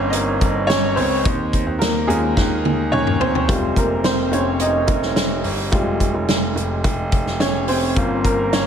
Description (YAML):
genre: piano-driven pop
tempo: 107 BPM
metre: 4/4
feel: straight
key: F minor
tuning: A4 = 439 Hz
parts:
  - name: clear upright piano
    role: accompaniment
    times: 0.0-8.7 s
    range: G3 to Eb5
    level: -20 LUFS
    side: equal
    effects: slapback echo
  - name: clear concert grand piano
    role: bass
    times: 0.0-8.7 s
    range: F1 to Eb2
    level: -23 LUFS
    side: equal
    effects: none
  - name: loose indie drum kit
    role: drums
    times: 0.1-8.7 s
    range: hi-hat, kick drum, snare drum, toms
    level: -21 LUFS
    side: equal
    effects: none
room: moderate lush hall reverb, RT60 2.8 s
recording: big arena sound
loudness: -16 LUFS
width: side -8 dB against mid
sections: 0.0-3.5 A section; 3.5-8.7 B section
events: upright piano solo 0.0-3.5, 3.5-8.7; drum fill 2.4-3.5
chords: 0.0 Gm7b5; 1.2 Eb7sus4; 3.5 Fmadd9; 8.0 Gm7b5